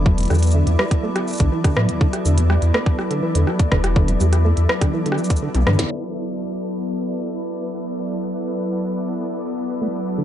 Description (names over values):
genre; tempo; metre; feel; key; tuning
IDM; 123 BPM; 4/4; straight; D major; A4 = 442 Hz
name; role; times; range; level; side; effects
glassy FM pad; sustained chords; 0.0-10.2 s; F#3 to D5; -24 LUFS; left 1 dB; ensemble chorus, built-in reverb, vintage 12-bit sampler grit
deep acid bass; arpeggios; 0.0-5.9, 9.8-10.2 s; D2 to A3; -25 LUFS; right 2 dB; vintage 12-bit sampler grit, dub echo
warm sub bass; bass; 0.0-5.8 s; E1 to A2; -17 LUFS; equal; none
pulsing gated texture; texture; 0.0-10.2 s; B3 to E5; -34 LUFS; equal; chorus, built-in reverb, sidechain pumping
electronic kick drum; drums; 0.1-5.4 s; none; -17 LUFS; equal; overdrive
glitchy drum kit; drums; 0.2-5.9 s; hi-hat, rim click, shaker, snare drum, toms; -24 LUFS; left 1 dB; overdrive, digital delay
room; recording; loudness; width
light reverb; dark, warm production, low-pass filter, nothing above 10.9 kHz; -18 LUFS; side -11 dB against mid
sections
0.0-5.9 A section; 5.9-10.2 B section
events
drum fill 5.5-5.9; band accent 5.8; filter sweep 5.9-10.2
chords
0.0 E7(no3); 5.9 D69